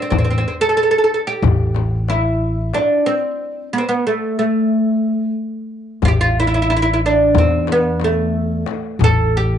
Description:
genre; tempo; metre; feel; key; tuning
Turkish makam ensemble; 182 BPM (eighths); 9/8; straight; A makam ussak; A4 = 440 Hz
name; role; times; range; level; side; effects
oud; melody; 0.0-9.6 s; A3 to A4; -17 LUFS; right 1 dB; none
upright bass; bass; 0.1-9.6 s; A1 to E2; -18 LUFS; equal; none
darbuka; percussion; 0.1-9.2 s; none; -22 LUFS; left 3 dB; none
frame drum; percussion; 0.1-9.2 s; none; -22 LUFS; left 6 dB; none
room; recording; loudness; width
light reverb, small room ambience; 1960s-style stereo, nothing above 10.4 kHz; -15 LUFS; side -9 dB against mid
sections
0.0-6.0 A section; 6.0-9.6 B section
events
stop 3.1-6.0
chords
none

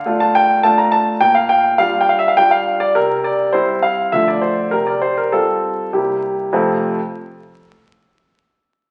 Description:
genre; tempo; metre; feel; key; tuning
classical-period piano sonatina; 101 BPM; 3/4; straight; F major; A4 = 440 Hz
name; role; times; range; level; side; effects
clear baby grand piano; solo; 0.0-7.0 s; F2 to Bb5; -16 LUFS; equal; none
room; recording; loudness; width
wet recital hall reverb, RT60 1.3 s; very old 78 rpm record, vinyl crackle, nothing above 11.0 kHz; -16 LUFS; mono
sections
0.0-6.5 A section; 6.5-8.4 B section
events
none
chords
0.0 Dm; 1.2 Gm7/Bb; 2.9 C; 4.1 Dm; 4.7 Csus4; 5.9 C7; 6.5 F

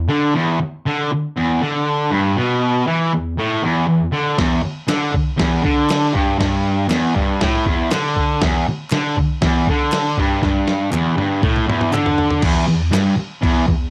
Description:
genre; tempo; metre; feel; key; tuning
garage rock duo or trio; 119 BPM; 4/4; straight; unclear; A4 = 440 Hz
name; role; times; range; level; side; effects
fuzz guitar; riff; 0.0-13.9 s; E2 to E3; -19 LUFS; equal; distortion, cassette tape
dusty soul sampler-style drum kit; drums; 4.4-13.8 s; crash cymbal, kick drum, snare drum, toms; -23 LUFS; equal; cassette tape
group handclap; percussion; 4.9-13.1 s; none; -35 LUFS; equal; none
room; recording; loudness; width
moderate small room reverb, RT60 0.6 s; home recording on cassette; -18 LUFS; mono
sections
0.0-12.4 A section; 12.4-13.9 B section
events
drum fill 10.4-12.4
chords
none

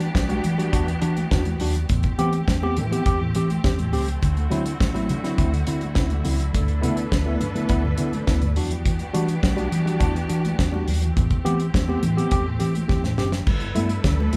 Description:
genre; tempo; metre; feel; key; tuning
disco; 104 BPM; 4/4; straight; G major; A4 = 440 Hz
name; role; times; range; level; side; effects
barky tine electric piano; accompaniment; 0.0-14.4 s; G2 to G4; -28 LUFS; equal; overdrive
clear studio string section; sustained chords; 0.0-14.4 s; D3 to B4; -35 LUFS; equal; none
hollow-body short-scale fingered electric bass; bass; 0.0-14.4 s; F#1 to E3; -26 LUFS; equal; none
damped 70s drum kit; drums; 0.0-14.4 s; crash cymbal, hi-hat, kick drum, snare drum; -27 LUFS; equal; none
congas; percussion; 0.2-14.4 s; none; -35 LUFS; equal; none
room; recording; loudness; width
moderate large studio reverb, RT60 1.1 s; band playing live in one room; -22 LUFS; mono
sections
0.0-13.5 A section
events
drum fill 12.9-13.5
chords
0.0 Em7; 1.9 Am7/E; 4.2 D7; 6.5 G6/D; 8.6 Em7; 11.2 Am7/E; 13.5 G6

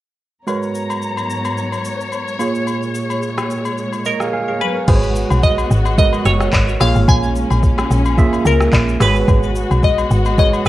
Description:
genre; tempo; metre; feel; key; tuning
amapiano; 109 BPM; 4/4; swing 55% on 16ths; G# minor; A4 = 439 Hz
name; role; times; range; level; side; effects
tine electric piano; accompaniment; 0.5-10.7 s; G#3 to G#5; -21 LUFS; right 4 dB; overdrive
dark symphonic string section; sustained chords; 0.5-10.7 s; G#2 to A#5; -24 LUFS; left 2 dB; sidechain pumping
smooth R&B drum kit; drums; 0.5-10.7 s; crash cymbal, handclaps, hi-hat, kick drum, rim click, shaker; -18 LUFS; equal; none
agogo bells and woodblock; percussion; 0.5-10.7 s; none; -27 LUFS; left 5 dB; none
glassy wavetable pluck; melody; 4.1-10.7 s; A#4 to G#5; -20 LUFS; equal; chorus, ping-pong delay
woody log drum bass; bass; 4.9-10.7 s; F#1 to C#2; -16 LUFS; equal; none
room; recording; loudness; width
little or no reverb; worn, warbling old tape, cassette tape, warbly pitch drift; -14 LUFS; side -15 dB against mid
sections
0.5-4.9 A section; 4.9-10.7 B section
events
tine electric piano fill 3.8-4.9; silent gap 4.3-4.9; drop 4.9-10.7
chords
0.5 G#m11; 2.4 A#m7; 4.6 G#m11; 6.8 A#m7; 9.0 G#m7

